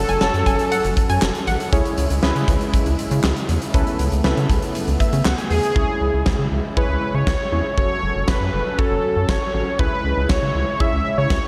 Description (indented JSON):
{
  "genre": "synth-pop",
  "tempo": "119 BPM",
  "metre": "4/4",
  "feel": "straight",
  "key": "C# minor",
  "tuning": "A4 = 441 Hz",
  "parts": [
    { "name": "unison lead", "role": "melody", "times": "0.0-1.5, 5.5-11.5 s", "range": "G#4 to E5", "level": "-25 LUFS", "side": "equal", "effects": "slapback echo, shimmer reverb" },
    { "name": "warm analog keys", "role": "accompaniment", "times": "0.0-11.3 s", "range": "C#4 to G#5", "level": "-30 LUFS", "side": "equal", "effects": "chorus, slapback echo, shimmer reverb" },
    { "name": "warm analog pad", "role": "sustained chords", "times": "0.0-11.5 s", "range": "C#3 to A4", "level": "-30 LUFS", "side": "equal", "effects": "chorus, shimmer reverb" },
    { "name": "rubbery square bass", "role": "bass", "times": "0.0-11.4 s", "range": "F#1 to C#3", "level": "-24 LUFS", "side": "equal", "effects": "none" },
    { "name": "analog pluck", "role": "second line", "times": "0.1-1.6 s", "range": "F#5 to A5", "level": "-28 LUFS", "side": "equal", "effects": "chorus, slapback echo, shimmer reverb" },
    { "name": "huge arena drum kit", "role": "drums", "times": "0.1-11.4 s", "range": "handclaps, hi-hat, kick drum, snare drum", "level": "-24 LUFS", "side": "equal", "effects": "none" }
  ],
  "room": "moderate lush hall reverb, RT60 1.5 s, studio reverb",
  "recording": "big arena sound",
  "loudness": "-20 LUFS",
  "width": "mono",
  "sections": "0.0-5.8 A section; 5.8-11.5 B section",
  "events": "synth keys fill 4.8-5.8",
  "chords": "0.0 F#m; 1.7 C#m; 3.7 Aadd9/C#; 5.8 C#m; 7.8 F#m; 9.8 C#m",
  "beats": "0.21 0.72 1.22 | 1.73 2.23 2.73 3.24 | 3.74 4.25 4.75 5.25 | 5.76 6.26 6.77 7.27 | 7.78 8.28 8.78 9.29 | 9.79 10.30 10.80 11.30"
}